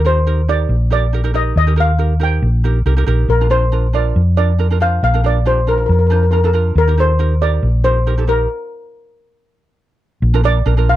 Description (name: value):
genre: calypso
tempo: 138 BPM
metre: 4/4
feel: swing 54% on 16ths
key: unclear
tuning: A4 = 440 Hz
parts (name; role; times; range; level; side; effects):
- steel pan; melody; 0.0-11.0 s; Bb4 to G5; -18 LUFS; left 1 dB; none
- ukulele; accompaniment; 0.0-11.0 s; D4 to C5; -23 LUFS; right 9 dB; none
- hollow-body short-scale fingered electric bass; bass; 0.0-11.0 s; Bb1 to F2; -14 LUFS; equal; none
room: little or no reverb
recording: dry, close 1970s-style studio recording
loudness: -12 LUFS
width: side -14 dB against mid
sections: 0.0-10.2 A section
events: stop 8.5-10.2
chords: 0.0 Eb; 3.3 Bb; 6.8 Eb; 10.2 Bb